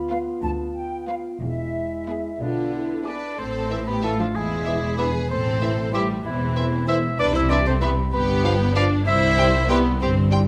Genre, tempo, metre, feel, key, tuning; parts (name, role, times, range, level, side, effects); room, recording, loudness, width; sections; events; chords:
cinematic, playful, whimsical film cue; 63 BPM (dotted quarters); 6/8; straight; A minor; A4 = 440 Hz
mellow French horn section; sustained chords; 0.0-10.4 s; G3 to F4; -34 LUFS; equal
dark studio double bass section; bass; 0.0-10.5 s; E1 to D2; -28 LUFS; equal
warm symphonic cello section; bass; 0.0-10.5 s; C2 to C3; -30 LUFS; equal
warm studio violin section; melody; 0.1-10.4 s; G#4 to G5; -35 LUFS; equal
large flute ensemble; second line; 0.1-10.4 s; E5 to E6; -37 LUFS; equal
warm studio violin section; second line; 0.1-10.1 s; B3 to C5; -33 LUFS; equal
warm studio viola section; accompaniment; 0.1-10.3 s; D3 to E4; -30 LUFS; equal
small celesta; melody; 2.4-10.3 s; D5 to E6; -34 LUFS; equal
clear clarinet; second line; 2.4-10.2 s; D4 to E5; -28 LUFS; equal
warm bassoon; accompaniment; 3.7-10.4 s; E3 to G3; -34 LUFS; equal
moderate recital hall reverb, RT60 1.5 s; -22 LUFS; mono
0.0-3.4 A section; 3.4-10.5 B section
0.0 Bdim/D; 1.4 E; 3.4 Am; 4.3 E7; 5.3 Am; 7.2 C; 8.1 G7; 9.1 C